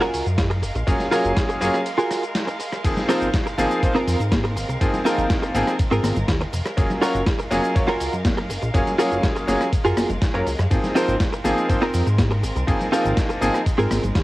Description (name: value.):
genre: nu-disco, nu disco.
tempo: 122 BPM.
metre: 4/4.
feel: straight.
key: Ab mixolydian.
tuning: A4 = 440 Hz.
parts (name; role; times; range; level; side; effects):
rich studio violin section; sustained chords; 0.0-14.2 s; Ab3 to F5; -32 LUFS; right 1 dB; sidechain pumping.
direct-recorded clean electric guitar; riff; 0.0-14.0 s; C4 to Bb4; -23 LUFS; right 1 dB; analog chorus, tape echo.
dusty soul sampler-style drum kit; drums; 0.0-14.2 s; cabasa, crash cymbal, hi-hat, ride cymbal, rim click, snare drum; -29 LUFS; equal; overdrive, studio ambience.
chorused synth bass; bass; 0.1-14.2 s; F1 to Ab2; -24 LUFS; equal; none.
electronic kick drum; drums; 0.4-14.2 s; none; -22 LUFS; equal; overdrive, studio ambience.
bright concert grand piano; accompaniment; 0.9-13.6 s; F3 to F5; -22 LUFS; equal; sidechain pumping, tape echo.
cabasa and congas; percussion; 2.8-14.2 s; none; -29 LUFS; left 2 dB; none.
room: moderate booth ambience, RT60 0.3 s.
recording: home recording on cassette.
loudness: -18 LUFS.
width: side -18 dB against mid.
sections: 0.0-14.2 A section.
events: break 1.9-2.8.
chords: 0.0 Gbmaj9; 2.8 Ab69; 6.8 Gbmaj9; 10.7 Ab69.